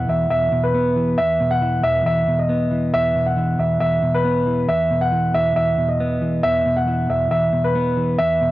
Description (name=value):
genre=hip hop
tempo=137 BPM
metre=4/4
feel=half-time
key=unclear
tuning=A4 = 438 Hz
part: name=dark concert grand piano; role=melody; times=0.0-8.5 s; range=B4 to F#5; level=-19 LUFS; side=equal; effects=low-pass filter, analog delay
part: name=mellow electric guitar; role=accompaniment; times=0.0-8.5 s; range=E2 to B3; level=-20 LUFS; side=equal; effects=low-pass filter
room=light reverb, small room ambience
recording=dry, gritty hardware recording, transformer saturation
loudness=-16 LUFS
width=side -16 dB against mid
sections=0.0-8.5 A section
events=none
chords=0.0 E5